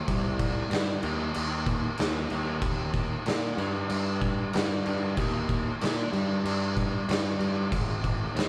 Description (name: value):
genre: stoner and doom metal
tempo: 94 BPM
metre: 4/4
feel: straight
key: unclear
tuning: A4 = 440 Hz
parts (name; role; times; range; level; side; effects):
- fuzz picked electric bass; bass; 0.1-8.5 s; Ab1 to Bb2; -32 LUFS; equal; overdrive
- oversized low-tuned drum kit; drums; 0.1-8.5 s; crash cymbal, kick drum, snare drum; -31 LUFS; equal; none
room: light reverb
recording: band playing live in one room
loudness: -29 LUFS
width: mono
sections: 0.0-8.5 A section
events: none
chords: none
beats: | 0.08 0.71 1.35 1.99 | 2.62 3.26 3.90 4.53 | 5.17 5.81 6.44 7.08 | 7.72 8.35